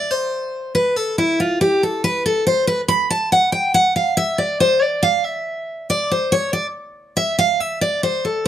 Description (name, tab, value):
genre	bluegrass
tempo	140 BPM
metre	3/4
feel	straight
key	C major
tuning	A4 = 439 Hz
part	picked steel-string acoustic guitar	solo	0.0-8.5 s	E4 to B5	-16 LUFS	equal	none
room	moderate studio reverb, RT60 0.7 s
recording	close, detailed microphones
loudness	-16 LUFS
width	side -11 dB against mid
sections	0.0-8.5 A section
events	steel-string acoustic guitar solo 0.0-8.5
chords	none